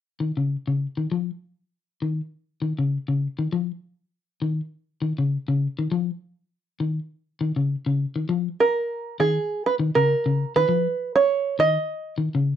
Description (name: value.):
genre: afrobeat.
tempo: 100 BPM.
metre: 4/4.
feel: swing 56% on 16ths.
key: unclear.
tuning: A4 = 442 Hz.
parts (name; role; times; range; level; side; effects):
electric guitar at the edge of break-up; arpeggios; 0.2-12.5 s; C#3 to E#3; -23 LUFS; left 3 dB; none.
open-back banjo; melody; 8.6-12.1 s; G#4 to D#5; -20 LUFS; right 4 dB; none.
room: moderate studio reverb, RT60 0.5 s.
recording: dry, close 1970s-style studio recording.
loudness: -22 LUFS.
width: side -10 dB against mid.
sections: 0.0-9.5 A section; 9.5-12.6 B section.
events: none.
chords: 0.0 C#add9.